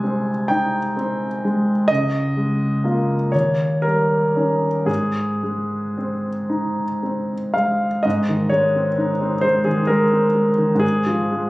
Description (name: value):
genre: classical, romantic nocturne for solo piano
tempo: 37-44 BPM (dotted quarters)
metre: 6/8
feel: rubato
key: Ab major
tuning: A4 = 440 Hz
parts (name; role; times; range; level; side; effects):
- clear concert grand piano; solo; 0.0-11.5 s; C2 to Ab5; -17 LUFS; equal; none
room: light reverb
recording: recorded on a phone in the room, club reverb, nothing above 10.4 kHz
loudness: -17 LUFS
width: side -19 dB against mid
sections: 0.0-8.1 A section; 8.1-11.5 A section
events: none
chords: 0.0 Ab/C; 1.9 Db6; 3.3 Eb7; 4.9 Ab; 10.8 Db/Ab (rootless)